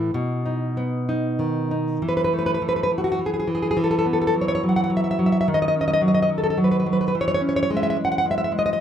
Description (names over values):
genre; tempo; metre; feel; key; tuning
romantic piece for solo classical guitar; 93-109 BPM; 3/4; rubato; E major; A4 = 444 Hz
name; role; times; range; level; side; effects
nylon-string guitar; solo; 0.0-8.8 s; A2 to F#5; -19 LUFS; equal; none
room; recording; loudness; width
moderate plate reverb, RT60 3.6 s; none; -19 LUFS; side -9 dB against mid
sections
0.0-2.0 A section; 2.0-8.8 B section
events
none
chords
0.1 B; 2.0 Eadd11; 3.8 Esus24; 5.5 D#m7; 7.1 E